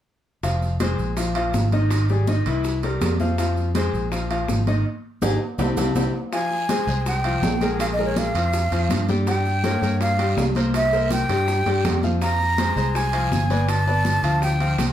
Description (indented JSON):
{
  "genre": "latin, salsa",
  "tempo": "163 BPM",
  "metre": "4/4",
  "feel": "straight",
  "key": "F minor",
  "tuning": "A4 = 435 Hz",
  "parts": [
    { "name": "bright grand piano", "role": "accompaniment", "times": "0.4-14.9 s", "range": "Eb3 to G5", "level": "-26 LUFS", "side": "left 3 dB", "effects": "none" },
    { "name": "fingered electric bass", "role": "bass", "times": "0.4-14.9 s", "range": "F1 to G2", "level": "-23 LUFS", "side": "equal", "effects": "none" },
    { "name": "bongos", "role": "percussion", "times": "0.4-14.9 s", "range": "none", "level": "-33 LUFS", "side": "left 2 dB", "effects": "none" },
    { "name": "congas", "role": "percussion", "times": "0.4-14.9 s", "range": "none", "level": "-29 LUFS", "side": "equal", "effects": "none" },
    { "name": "maracas", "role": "percussion", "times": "0.4-14.9 s", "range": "none", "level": "-39 LUFS", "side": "right 4 dB", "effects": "none" },
    { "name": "timbales", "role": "percussion", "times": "0.4-14.9 s", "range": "none", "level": "-32 LUFS", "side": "right 5 dB", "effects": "none" },
    { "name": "breathy mellow jazz flute", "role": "melody", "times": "6.3-14.9 s", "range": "Db5 to Bb5", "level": "-24 LUFS", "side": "right 1 dB", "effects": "none" },
    { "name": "guiro", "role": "percussion", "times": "6.3-14.9 s", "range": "none", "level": "-39 LUFS", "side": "right 6 dB", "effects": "none" }
  ],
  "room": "wet studio ambience, RT60 0.5 s",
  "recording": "heard from further back in the room",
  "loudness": "-19 LUFS",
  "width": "side -11 dB against mid",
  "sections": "0.4-6.3 A section; 6.3-14.9 B section",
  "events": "band accent 4.9-6.3",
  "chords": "0.4 Fm; 1.2 Bb5; 1.9 Abmaj7; 2.6 C7; 3.4 Fm; 4.1 Bb5; 4.9 Ab5; 5.6 C; 6.3 Fm; 7.8 Bb5; 9.3 Gdim; 10.7 C7; 12.2 Fm; 13.7 G7"
}